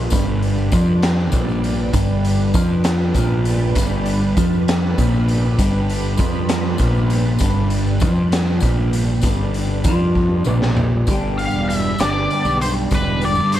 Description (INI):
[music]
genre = psychedelic rock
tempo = 66 BPM (dotted quarters)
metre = 6/8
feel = straight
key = G mixolydian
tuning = A4 = 440 Hz
[part]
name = string machine, violins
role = sustained chords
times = 0.0-13.6 s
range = G3 to B5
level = -28 LUFS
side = right 4 dB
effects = ensemble chorus
[part]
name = clean electric guitar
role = riff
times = 0.0-13.6 s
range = G2 to G4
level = -19 LUFS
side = equal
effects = phaser, double-tracked left and right
[part]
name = fuzz fingered electric bass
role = bass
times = 0.0-13.6 s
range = E1 to G2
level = -22 LUFS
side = equal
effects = overdrive
[part]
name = raw garage drum kit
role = drums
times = 0.1-13.6 s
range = hi-hat, kick drum, snare drum, toms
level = -22 LUFS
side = equal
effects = none
[part]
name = tambourine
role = percussion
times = 0.1-13.5 s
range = none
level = -36 LUFS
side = left 8 dB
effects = none
[part]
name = octave-fuzz lead guitar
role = melody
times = 11.4-13.6 s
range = B4 to F5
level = -20 LUFS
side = left 1 dB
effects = wah, distortion, slapback echo
[sound]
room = little or no reverb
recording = none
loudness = -15 LUFS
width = side -12 dB against mid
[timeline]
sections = 0.0-11.1 A section; 11.1-13.6 B section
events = drum fill 10.2-11.1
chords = 0.0 G